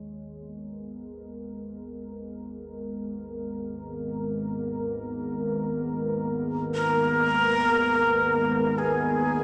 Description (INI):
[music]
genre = dark ambient drone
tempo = free time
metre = none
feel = none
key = G# minor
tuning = A4 = 440 Hz
[part]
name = dark analog pad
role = sustained chords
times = 0.0-9.4 s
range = G#3 to C#5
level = -29 LUFS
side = equal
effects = chorus
[part]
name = analog drone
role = drone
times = 0.0-9.4 s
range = G#1 to D#2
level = -35 LUFS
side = equal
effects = lush chorus
[part]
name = breathy bright shakuhachi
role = melody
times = 6.7-9.4 s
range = G#4 to A#4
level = -22 LUFS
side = equal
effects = analog delay
[sound]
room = wet spring reverb, RT60 2.3 s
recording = echo-heavy mix, small speaker sound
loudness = -23 LUFS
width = side -36 dB against mid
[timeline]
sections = 0.0-9.4 A section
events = fade-in on analog synth pad 0.0-9.4; filter sweep on synth drone 0.0-9.4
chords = 0.0 G#madd9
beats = free time